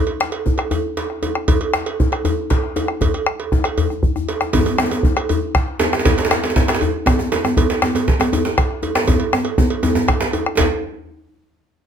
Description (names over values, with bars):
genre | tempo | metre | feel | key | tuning
west african traditional, West African drum ensemble | 158 BPM (dotted quarters) | 12/8 | straight | none | none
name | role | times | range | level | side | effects
cowbell | percussion | 0.1-10.7 s | none | -24 LUFS | right 7 dB | none
bombo | percussion | 0.2-10.7 s | none | -18 LUFS | equal | none
djembe | percussion | 0.2-10.7 s | none | -23 LUFS | left 5 dB | none
djembe | percussion | 4.5-10.7 s | none | -19 LUFS | right 2 dB | none
room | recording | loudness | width
light reverb | close, detailed microphones | -16 LUFS | side -8 dB against mid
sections
0.0-10.6 A section; 10.6-11.9 B section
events
speeding up 0.0-11.9; drum fill 3.9-4.5, 9.1-10.6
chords
none